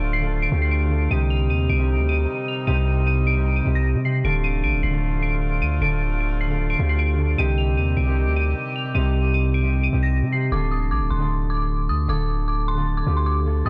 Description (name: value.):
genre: hip hop.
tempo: 153 BPM.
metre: 4/4.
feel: half-time.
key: D phrygian.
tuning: A4 = 440 Hz.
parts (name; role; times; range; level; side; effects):
dark detuned synth bell; melody; 0.0-13.7 s; C6 to F7; -30 LUFS; equal; chorus, phaser, low-pass filter, analog delay.
concert harp; accompaniment; 0.0-13.7 s; C3 to A4; -28 LUFS; equal; low-pass filter.
warm woodwind section; sustained chords; 0.0-10.5 s; C3 to G4; -37 LUFS; equal; none.
long sustained 808-style bass; bass; 0.0-13.7 s; D1 to C3; -24 LUFS; equal; none.
room: small room ambience.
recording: dry, gritty hardware recording.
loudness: -22 LUFS.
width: mono.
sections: 0.0-10.5 A section; 10.5-13.7 B section.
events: none.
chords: 0.0 Dm; 1.1 Cm; 4.2 Dm; 7.4 Cm; 10.5 Dm.